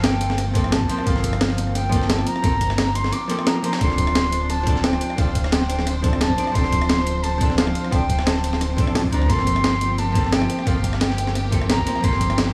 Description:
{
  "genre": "liquid drum and bass",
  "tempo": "175 BPM",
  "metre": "4/4",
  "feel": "straight",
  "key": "G minor",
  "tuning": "A4 = 440 Hz",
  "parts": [
    { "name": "reedy silver concert flute", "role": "melody", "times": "0.0-12.4 s", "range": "F5 to D6", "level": "-28 LUFS", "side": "equal", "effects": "analog delay" },
    { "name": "warm studio string section", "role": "sustained chords", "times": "0.0-12.5 s", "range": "F3 to C5", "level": "-33 LUFS", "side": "equal", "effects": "none" },
    { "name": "sub bass with octave", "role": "bass", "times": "0.0-12.5 s", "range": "D1 to D2", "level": "-27 LUFS", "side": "equal", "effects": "none" },
    { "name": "breakbeat sampler-style drum kit", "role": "drums", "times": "0.0-12.5 s", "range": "hi-hat, rim click, snare drum", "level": "-27 LUFS", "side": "equal", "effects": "analog delay" },
    { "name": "breakbeat sampler-style drum kit", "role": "drums", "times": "0.0-12.5 s", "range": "ride cymbal, snare drum", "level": "-34 LUFS", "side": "equal", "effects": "high-pass filter on cymbals, high-pass filter on snare" },
    { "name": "archtop guitar, miked and amplified", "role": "accompaniment", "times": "0.5-12.5 s", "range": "F3 to D5", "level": "-28 LUFS", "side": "equal", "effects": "dub echo" },
    { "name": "electronic kick drum", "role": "drums", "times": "0.6-12.3 s", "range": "none", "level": "-25 LUFS", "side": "equal", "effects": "none" }
  ],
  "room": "light reverb",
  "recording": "echo-heavy mix, small room ambience",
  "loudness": "-20 LUFS",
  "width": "mono",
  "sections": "0.0-12.5 A section",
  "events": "none",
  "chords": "0.0 Gm11; 3.8 Dm7; 9.3 Gm11"
}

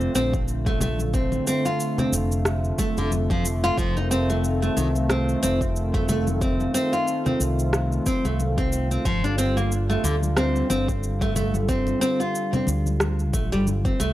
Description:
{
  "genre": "organic downtempo",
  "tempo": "91 BPM",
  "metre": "4/4",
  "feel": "swing 56% on 16ths",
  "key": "F mixolydian",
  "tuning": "A4 = 438 Hz",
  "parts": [
    { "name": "warm analog pad", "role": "sustained chords", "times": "0.0-14.1 s", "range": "D3 to F4", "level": "-28 LUFS", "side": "equal", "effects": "chorus, sidechain pumping" },
    { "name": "nylon-string guitar", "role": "arpeggios", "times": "0.0-14.1 s", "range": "D3 to F4", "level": "-25 LUFS", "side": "equal", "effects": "analog delay" },
    { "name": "fretless electric bass", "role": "bass", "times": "0.0-14.1 s", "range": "F1 to D2", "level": "-25 LUFS", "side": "equal", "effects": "sidechain pumping" },
    { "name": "electronic cabasa and rim click", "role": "drums", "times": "0.0-14.1 s", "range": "none", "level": "-29 LUFS", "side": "equal", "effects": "none" },
    { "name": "congas", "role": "percussion", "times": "0.1-14.0 s", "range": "none", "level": "-32 LUFS", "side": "left 2 dB", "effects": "none" },
    { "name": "electronic kick drum", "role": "drums", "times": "0.3-14.0 s", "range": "none", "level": "-26 LUFS", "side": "equal", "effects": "none" }
  ],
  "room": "little or no reverb",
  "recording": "dry, gritty hardware recording",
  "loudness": "-21 LUFS",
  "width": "side -14 dB against mid",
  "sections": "0.0-14.1 A section",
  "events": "none",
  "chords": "0.0 Bbmaj7; 3.8 F7; 9.1 G7(no3)"
}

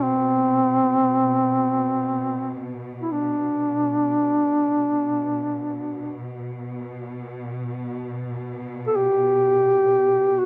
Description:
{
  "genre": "caucasian folk, Caucasian lament",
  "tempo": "free time",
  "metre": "none",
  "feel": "none",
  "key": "B phrygian",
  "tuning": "A4 = 439 Hz",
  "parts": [
    { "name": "dark duduk", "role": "melody", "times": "0.0-10.5 s", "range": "C4 to A4", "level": "-22 LUFS", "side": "equal", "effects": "cassette tape" },
    { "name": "warm studio string section", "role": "drone", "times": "0.0-10.5 s", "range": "B2", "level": "-34 LUFS", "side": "equal", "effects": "cassette tape" }
  ],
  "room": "light reverb",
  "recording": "home recording on cassette",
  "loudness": "-22 LUFS",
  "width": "mono",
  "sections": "0.0-10.5 A section",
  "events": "none",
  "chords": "none"
}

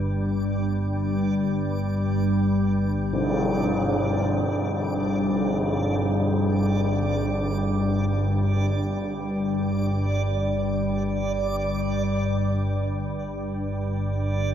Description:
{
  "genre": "dark ambient drone",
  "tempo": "free time",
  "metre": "none",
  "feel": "none",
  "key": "unclear",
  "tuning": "A4 = 440 Hz",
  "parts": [
    { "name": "organ-like drone", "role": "drone", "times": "0.0-14.5 s", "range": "G1 to G2", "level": "-23 LUFS", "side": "equal", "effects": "ensemble chorus, built-in reverb" },
    { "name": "backwards swelling texture", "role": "texture", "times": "0.0-14.5 s", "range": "D5", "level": "-33 LUFS", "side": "right 2 dB", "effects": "built-in reverb" },
    { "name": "tam-tam", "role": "percussion", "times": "3.1-5.5 s", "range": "none", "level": "-28 LUFS", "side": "equal", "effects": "low-pass filter on cymbals" }
  ],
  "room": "wet cathedral reverb, RT60 5.6 s",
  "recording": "none",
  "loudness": "-22 LUFS",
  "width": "side -9 dB against mid",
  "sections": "0.0-14.5 A section",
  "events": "fade-in on synth texture 0.0-14.5",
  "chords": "0.0 G5"
}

